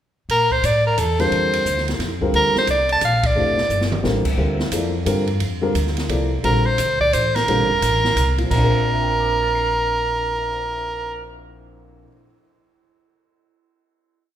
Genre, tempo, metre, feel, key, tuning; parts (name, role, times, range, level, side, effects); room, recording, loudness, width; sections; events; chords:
modal jazz; 175 BPM; 3/4; swing 64% on 8ths; Bb lydian; A4 = 442 Hz
bright soprano saxophone; melody; 0.3-3.9, 6.4-11.3 s; A4 to A5; -19 LUFS; right 1 dB
upright bass; bass; 0.3-12.0 s; F1 to Bb2; -23 LUFS; equal
open jazz drum kit; drums; 0.3-10.5 s; crash cymbal, cymbal swell, hi-hat, kick drum, ride cymbal, snare drum, toms; -27 LUFS; right 1 dB
warm baby grand piano; accompaniment; 1.2-12.4 s; Bb2 to C7; -24 LUFS; left 1 dB
moderate recital hall reverb, RT60 1.4 s; recorded in a church or concert hall; -17 LUFS; side -10 dB against mid
0.3-8.5 A section; 8.5-10.6 final chord
band accent 3.2; drum fill 3.7-4.0
0.3 Bbmaj9